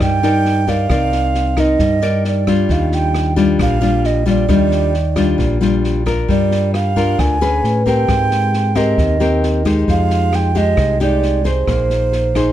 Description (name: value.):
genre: bossa nova.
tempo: 134 BPM.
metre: 4/4.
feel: straight.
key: Eb major.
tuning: A4 = 440 Hz.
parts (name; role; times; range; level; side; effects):
bright alto ocarina; melody; 0.0-12.5 s; C5 to Ab5; -19 LUFS; right 6 dB; none.
nylon-string guitar; accompaniment; 0.0-12.5 s; Bb2 to D5; -17 LUFS; left 3 dB; none.
deep dub fingered electric bass; bass; 0.0-12.5 s; Bb1 to A2; -18 LUFS; equal; none.
open jazz drum kit; drums; 0.0-12.5 s; kick drum, rim click, snare drum; -24 LUFS; equal; none.
room: light reverb.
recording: dark, warm production.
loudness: -13 LUFS.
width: side -12 dB against mid.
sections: 0.0-12.5 A section.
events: none.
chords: 0.0 Cm9; 2.7 Ebmaj9; 6.3 Gm7; 7.6 Amaj9; 8.1 Abmaj9; 9.9 Fm9; 11.7 Bb9sus4.